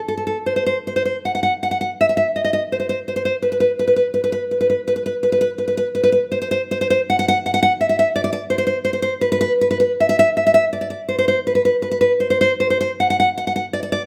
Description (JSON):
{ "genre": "romantic piece for solo classical guitar", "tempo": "82 BPM", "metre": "4/4", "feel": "uneven beats, rubato", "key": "unclear", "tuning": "A4 = 437 Hz", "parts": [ { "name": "nylon-string guitar", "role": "solo", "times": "0.1-14.0 s", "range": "A4 to F#5", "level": "-19 LUFS", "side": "equal", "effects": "none" } ], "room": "light reverb", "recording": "none", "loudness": "-19 LUFS", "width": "mono", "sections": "0.0-14.1 A section", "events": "none", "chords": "none", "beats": "| 0.37 1.15 1.90 2.62 | 3.34 4.06 4.79 5.50 | 6.21 6.99 7.72 8.42 | 9.14 9.91 10.65 11.38 | 12.12 12.90 13.64" }